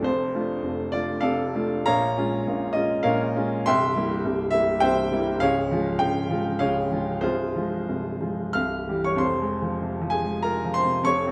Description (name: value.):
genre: classical, romantic character piece for solo piano.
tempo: 89-106 BPM.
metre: 3/4.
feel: rubato.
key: F minor.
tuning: A4 = 439 Hz.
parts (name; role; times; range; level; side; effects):
warm upright piano; solo; 0.0-11.3 s; C1 to F6; -24 LUFS; equal; none.
room: moderate recital hall reverb, RT60 1.5 s.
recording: close, detailed microphones.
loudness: -25 LUFS.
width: mono.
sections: 0.0-9.2 A section; 9.2-11.3 B section.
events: none.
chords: 0.0 Dm/F; 1.9 Bbm7; 3.7 C7; 5.4 Db; 7.2 Fm/C; 8.6 C; 9.2 Fm.